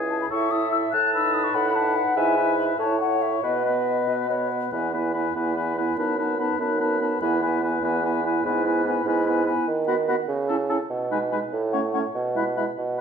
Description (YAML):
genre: quick classical-period movement for wind quintet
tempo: 96 BPM (dotted quarters)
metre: 6/8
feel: straight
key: E major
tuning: A4 = 441 Hz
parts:
  - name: warm oboe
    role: second line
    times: 0.0-13.0 s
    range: G#4 to C#5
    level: -28 LUFS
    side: left 5 dB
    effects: none
  - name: clear French horn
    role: accompaniment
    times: 0.0-12.6 s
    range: G#3 to E4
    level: -32 LUFS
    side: equal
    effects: none
  - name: mellow bassoon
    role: bass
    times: 0.0-13.0 s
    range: C#2 to D#3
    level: -26 LUFS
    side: right 3 dB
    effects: none
  - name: mellow hollow silver concert flute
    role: melody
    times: 0.1-12.6 s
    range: D#5 to F#6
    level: -28 LUFS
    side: left 8 dB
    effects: none
  - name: warm clarinet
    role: accompaniment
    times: 0.3-12.7 s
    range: C#4 to A5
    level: -28 LUFS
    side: right 7 dB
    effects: none
room: wet recital hall reverb, RT60 1.6 s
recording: minimal, uncompressed stereo recording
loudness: -21 LUFS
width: side -6 dB against mid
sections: 0.0-4.7 A section; 4.7-13.0 B section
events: none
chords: 0.3 A; 0.9 B7/A; 2.2 E/G#; 2.8 A; 3.4 B; 4.7 E; 6.0 B7/F#; 7.2 E; 8.4 E/G#; 9.7 B/D#; 10.3 A/C#; 10.9 G#m/B; 11.5 F#m/A (rootless); 12.2 E/B